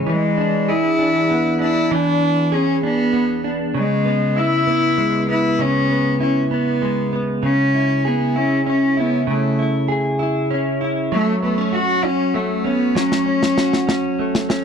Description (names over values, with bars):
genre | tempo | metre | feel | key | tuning
six-eight pop ballad | 65 BPM (dotted quarters) | 6/8 | straight | unclear | A4 = 435 Hz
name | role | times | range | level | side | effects
direct-recorded clean electric guitar | accompaniment | 0.0-14.6 s | C#3 to G#4 | -19 LUFS | right 1 dB | double-tracked left and right
warm cello | melody | 0.1-14.2 s | G#3 to F#4 | -18 LUFS | left 1 dB | none
snare drum | drums | 13.0-14.6 s | none | -21 LUFS | left 1 dB | none
room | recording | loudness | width
small room reverb | dry, close 1970s-style studio recording | -16 LUFS | side -7 dB against mid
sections
0.1-14.6 A section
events
drum fill 13.0-14.6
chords
0.1 E7; 3.7 C#m7; 7.4 Amaj7/C# (rootless); 11.1 F#m